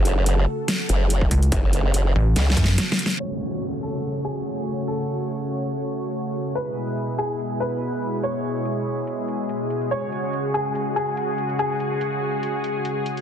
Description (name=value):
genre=heavy wobble dubstep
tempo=143 BPM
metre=4/4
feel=swing 54% on 16ths, half-time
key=F# minor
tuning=A4 = 439 Hz
part: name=lush unison pad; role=sustained chords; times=0.0-13.2 s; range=B2 to C#5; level=-26 LUFS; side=equal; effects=chorus, sidechain pumping
part: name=formant-sweep wobble bass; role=bass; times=0.0-2.6 s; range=F#1 to C#2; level=-19 LUFS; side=equal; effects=chorus, overdrive
part: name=dubstep drum kit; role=drums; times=0.1-13.2 s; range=hi-hat, snare drum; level=-25 LUFS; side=equal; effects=low-pass filter on hats, low-pass filter on snare
part: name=electronic kick drum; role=drums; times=1.2-2.7 s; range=none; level=-23 LUFS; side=equal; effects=distortion
part: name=pulsing pluck wobble bass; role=bass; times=1.3-2.8 s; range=A1 to F#2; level=-18 LUFS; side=equal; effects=chorus, overdrive
part: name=bright baby grand piano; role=melody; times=3.2-13.2 s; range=G#4 to C#5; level=-29 LUFS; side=equal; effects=tape echo
part: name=downlifter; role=sound effects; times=3.2-6.6 s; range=none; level=-34 LUFS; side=equal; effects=none
room=light reverb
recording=dense, heavily limited modern master, low-pass filter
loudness=-21 LUFS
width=side -9 dB against mid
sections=0.0-3.2 A section; 3.2-13.2 B section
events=drop 0.0-3.2; drum fill 2.4-3.2; break 2.8-3.2; band accent 3.1; filter sweep on drum 3.2-13.2; filter sweep 3.2-13.2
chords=0.0 F#m; 6.6 E; 9.9 C#sus4